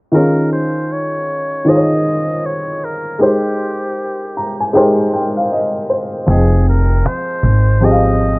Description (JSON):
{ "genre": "lo-fi hip hop", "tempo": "78 BPM", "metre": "4/4", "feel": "swing 61% on 16ths", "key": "unclear", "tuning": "A4 = 440 Hz", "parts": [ { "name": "trumpet with metal mute", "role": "melody", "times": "0.1-8.4 s", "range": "G4 to Eb5", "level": "-21 LUFS", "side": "equal", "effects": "low-pass filter" }, { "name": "warm upright piano", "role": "accompaniment", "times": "0.1-8.4 s", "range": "Eb3 to Bb5", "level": "-15 LUFS", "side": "equal", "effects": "cassette tape, low-pass filter" }, { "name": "upright bass", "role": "bass", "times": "6.3-8.4 s", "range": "F1 to Ab1", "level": "-12 LUFS", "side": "equal", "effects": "tube saturation" }, { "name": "cajon", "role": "drums", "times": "6.3-8.3 s", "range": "none", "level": "-18 LUFS", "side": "equal", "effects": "none" } ], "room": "studio reverb", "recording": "dry, gritty hardware recording, vinyl crackle, low-pass filter", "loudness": "-13 LUFS", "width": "side -26 dB against mid", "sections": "0.1-8.4 A section", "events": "upright piano fill 4.0-6.3", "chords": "0.1 Eb9sus4; 3.2 Abmaj7; 6.3 Fm7", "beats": "| 0.13 0.90 1.66 2.43 | 3.20 3.97 4.74 5.51 | 6.28 7.05 7.82" }